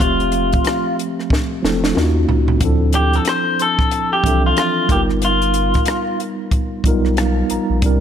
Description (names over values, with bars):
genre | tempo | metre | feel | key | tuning
R&B, neo-soul | 92 BPM | 4/4 | swing 59% on 16ths | unclear | A4 = 441 Hz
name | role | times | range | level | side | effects
electric guitar through a small old amp | melody | 0.0-6.2 s | F4 to C5 | -18 LUFS | left 1 dB | none
mellow tine electric piano | accompaniment | 0.0-8.0 s | E3 to A#5 | -20 LUFS | right 1 dB | medium stereo tremolo
round analog bass | bass | 0.0-8.0 s | E1 to Eb2 | -18 LUFS | equal | none
compact cocktail drum kit | drums | 0.0-8.0 s | hi-hat, kick drum, rim click, snare drum, toms | -20 LUFS | equal | none
room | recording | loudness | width
light reverb, studio ambience | none | -14 LUFS | side -9 dB against mid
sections
0.0-8.0 A section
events
drum fill 1.3-2.6; tine electric piano fill 6.8-7.8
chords
0.0 Fmaj9; 2.0 Ebm9; 2.6 Dm9; 4.9 G7alt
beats
| 0.00 0.65 1.30 1.95 | 2.61 3.26 3.91 4.56 | 5.21 5.87 6.52 7.17 | 7.82